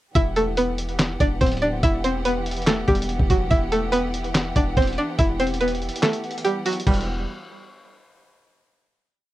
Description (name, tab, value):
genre	hip hop, trap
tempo	143 BPM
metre	4/4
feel	half-time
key	E minor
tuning	A4 = 441 Hz
part	string-like resonator pluck	melody	0.2-7.1 s	F#3 to E5	-23 LUFS	right 1 dB	chorus, cassette tape, analog delay
part	warm studio string section	sustained chords	0.2-7.1 s	E3 to F#5	-31 LUFS	equal	cassette tape
part	warm 808-style bass	bass	0.2-7.3 s	D1 to E1	-26 LUFS	equal	none
part	lo-fi sampler-style drum kit	drums	0.2-7.1 s	crash cymbal, handclaps, hi-hat, kick drum, snare drum	-23 LUFS	equal	none
room	little or no reverb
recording	home recording on cassette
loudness	-19 LUFS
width	side -15 dB against mid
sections	0.2-6.9 hook; 6.9-8.5 final chord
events	kick muted 6.0-6.9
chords	0.2 Emadd9